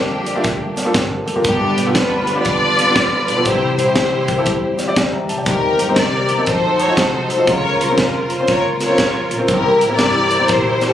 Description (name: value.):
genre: uptempo gospel.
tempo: 119 BPM.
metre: 4/4.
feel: swing 65% on 8ths.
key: unclear.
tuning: A4 = 440 Hz.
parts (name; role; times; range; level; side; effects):
rich studio string section; melody; 0.0-10.9 s; Bb3 to D5; -17 LUFS; left 1 dB; none.
mellow tonewheel organ; sustained chords; 0.0-10.9 s; Db3 to A4; -24 LUFS; equal; slow rotary speaker.
upright bass; bass; 0.0-10.9 s; F1 to G2; -26 LUFS; equal; none.
warm grand piano; accompaniment; 0.3-10.9 s; G2 to Bb5; -21 LUFS; left 1 dB; none.
crisp fusion drum kit; drums; 0.3-10.9 s; hi-hat, kick drum, snare drum; -20 LUFS; equal; none.
room: moderate echo chamber reverb, RT60 2.6 s.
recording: recorded on a phone in the room, club reverb.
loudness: -14 LUFS.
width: side -10 dB against mid.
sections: 0.0-10.9 A section.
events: none.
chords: 0.0 Bb6/F; 1.4 G7; 3.5 C; 5.5 Eb6; 6.5 F7b9; 7.5 Bbmadd9; 9.5 C7.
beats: 0.44 0.94 | 1.45 1.95 2.45 2.95 | 3.45 3.96 4.46 4.96 | 5.46 5.97 6.47 6.97 | 7.47 7.98 8.48 8.98 | 9.49 9.99 10.49.